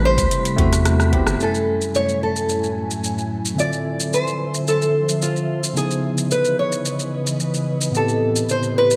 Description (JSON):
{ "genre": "sunset chillout", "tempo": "110 BPM", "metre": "4/4", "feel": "straight", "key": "unclear", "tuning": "A4 = 440 Hz", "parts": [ { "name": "nylon-string guitar", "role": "melody", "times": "0.0-9.0 s", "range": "F4 to D5", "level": "-24 LUFS", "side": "equal", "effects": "lush chorus, delay" }, { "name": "tine electric piano", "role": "accompaniment", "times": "0.0-9.0 s", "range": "F#2 to G#5", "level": "-26 LUFS", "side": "equal", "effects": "none" }, { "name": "ethereal airy pad", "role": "sustained chords", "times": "0.1-9.0 s", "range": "A2 to G#5", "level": "-28 LUFS", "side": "equal", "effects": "ensemble chorus, built-in reverb" }, { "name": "round analog bass", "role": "bass", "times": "0.0-1.4 s", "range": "G1 to E2", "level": "-20 LUFS", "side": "equal", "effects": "none" }, { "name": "wind-like tuned noise texture", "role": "texture", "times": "0.0-1.4 s", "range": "B5", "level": "-37 LUFS", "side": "equal", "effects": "built-in reverb" }, { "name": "deep house drum kit", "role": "drums", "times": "0.2-9.0 s", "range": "hi-hat, rim click, shaker", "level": "-28 LUFS", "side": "equal", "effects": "overdrive, gated reverb" }, { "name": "electronic kick drum", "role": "drums", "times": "0.2-1.2 s", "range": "none", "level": "-26 LUFS", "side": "equal", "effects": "overdrive" } ], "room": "moderate plate reverb, RT60 1.9 s", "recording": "bright 1980s-style digital production", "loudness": "-20 LUFS", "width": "mono", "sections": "0.0-1.4 A section; 1.4-9.0 B section", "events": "filter sweep on tine electric piano 0.0-1.4; drum fill 0.9-1.4", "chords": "0.0 Am9; 1.4 F#m9; 3.6 Dm9; 5.8 C#m9; 7.9 Am9" }